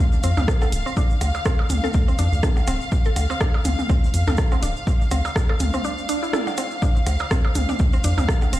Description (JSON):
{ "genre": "minimal techno", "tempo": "123 BPM", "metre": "4/4", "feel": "swing 56% on 16ths", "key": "D minor", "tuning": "A4 = 441 Hz", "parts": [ { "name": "rubbery square bass", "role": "bass", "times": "0.0-8.6 s", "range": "D1 to F2", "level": "-21 LUFS", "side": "equal", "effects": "sidechain pumping" }, { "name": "clear studio string section", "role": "texture", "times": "0.0-8.6 s", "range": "F5", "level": "-30 LUFS", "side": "left 1 dB", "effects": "sidechain pumping" }, { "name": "cabasa", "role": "percussion", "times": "0.1-8.6 s", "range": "none", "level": "-37 LUFS", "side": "right 4 dB", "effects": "none" }, { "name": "mallet-like synth pluck", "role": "riff", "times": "0.2-8.6 s", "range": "C4 to A4", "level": "-30 LUFS", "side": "right 1 dB", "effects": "chorus, phaser, sidechain pumping, dub echo" }, { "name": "punchy analog drum machine", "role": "drums", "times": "0.2-8.6 s", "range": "hi-hat, rim click", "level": "-30 LUFS", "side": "right 1 dB", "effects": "none" }, { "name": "electronic toms and percussion blips", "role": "percussion", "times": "0.4-8.5 s", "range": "none", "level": "-29 LUFS", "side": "right 1 dB", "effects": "digital delay" }, { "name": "electronic kick drum", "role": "drums", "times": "0.5-8.4 s", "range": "none", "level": "-20 LUFS", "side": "equal", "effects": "none" }, { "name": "swell", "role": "sound effects", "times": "6.0-6.8 s", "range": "none", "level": "-32 LUFS", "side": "left 2 dB", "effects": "none" }, { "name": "pulsing gated texture", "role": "texture", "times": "6.8-8.6 s", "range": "C5", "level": "-38 LUFS", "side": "right 5 dB", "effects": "chorus, built-in reverb, sidechain pumping" } ], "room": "little or no reverb", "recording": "played on a big sound system in a bare room, large studio reverb", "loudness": "-18 LUFS", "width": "side -15 dB against mid", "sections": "0.0-8.6 A section", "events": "break 5.8-6.8; swell 6.0-6.8", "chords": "0.0 Dm7", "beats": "0.48 | 0.97 1.46 1.94 2.43 | 2.92 3.41 3.90 4.38 | 4.87 5.36 5.85 6.33 | 6.82 7.31 7.80 8.29" }